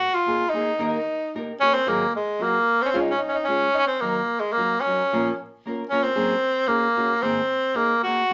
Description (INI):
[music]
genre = mexican folk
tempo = 112 BPM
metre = 2/4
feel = rubato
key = unclear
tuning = A4 = 440 Hz
[part]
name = clear tenor saxophone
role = melody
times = 0.0-8.3 s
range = Ab3 to Gb4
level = -23 LUFS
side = equal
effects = none
[part]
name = nylon-string guitar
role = accompaniment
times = 0.3-8.3 s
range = Ab2 to Bb4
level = -30 LUFS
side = equal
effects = none
[sound]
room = wet studio reverb, RT60 0.6 s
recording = vinyl crackle, nothing above 7.7 kHz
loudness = -23 LUFS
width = mono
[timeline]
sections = 0.0-4.0 A section; 4.0-8.3 A section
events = none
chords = 0.0 Abadd9; 0.8 Eb; 1.9 Ab7; 2.9 Db; 4.0 Ebm; 5.1 Bbm; 6.2 Gbadd9; 7.2 Abadd9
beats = 0.27 | 0.80 1.33 | 1.87 2.40 | 2.94 3.48 | 4.03 4.57 | 5.11 5.64 | 6.17 6.69 | 7.23 7.76 | 8.31